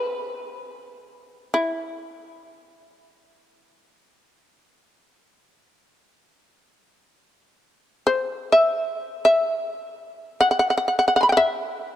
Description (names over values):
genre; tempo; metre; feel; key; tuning
japanese traditional; free time; none; none; unclear; A4 = 439 Hz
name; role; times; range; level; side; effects
shamisen; solo; 0.0-12.0 s; E4 to C6; -19 LUFS; equal; none
room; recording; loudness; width
moderate plate reverb, RT60 3.4 s; none; -19 LUFS; side -12 dB against mid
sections
0.0-6.5 A section; 6.5-12.0 A section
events
none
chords
none